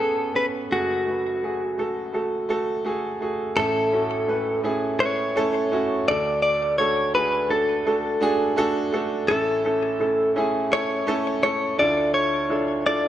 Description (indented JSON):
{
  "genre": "pop",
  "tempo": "84 BPM",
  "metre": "4/4",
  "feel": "swing 56% on 16ths",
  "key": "A major",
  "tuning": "A4 = 440 Hz",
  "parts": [
    { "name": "direct-recorded clean electric guitar", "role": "melody", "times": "0.0-13.1 s", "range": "F#4 to D5", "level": "-23 LUFS", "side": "left 1 dB", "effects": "ping-pong delay" },
    { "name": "clear upright piano", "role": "accompaniment", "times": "0.0-13.1 s", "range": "F#1 to B4", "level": "-24 LUFS", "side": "right 1 dB", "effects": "none" }
  ],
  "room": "moderate plate reverb, RT60 2.5 s",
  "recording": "none",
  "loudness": "-20 LUFS",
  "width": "side -11 dB against mid",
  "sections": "0.0-3.6 A section; 3.6-13.1 B section",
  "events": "none",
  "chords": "0.0 Aadd9; 0.7 F#madd9; 3.6 A; 6.1 D; 9.3 A; 11.8 Dmadd9"
}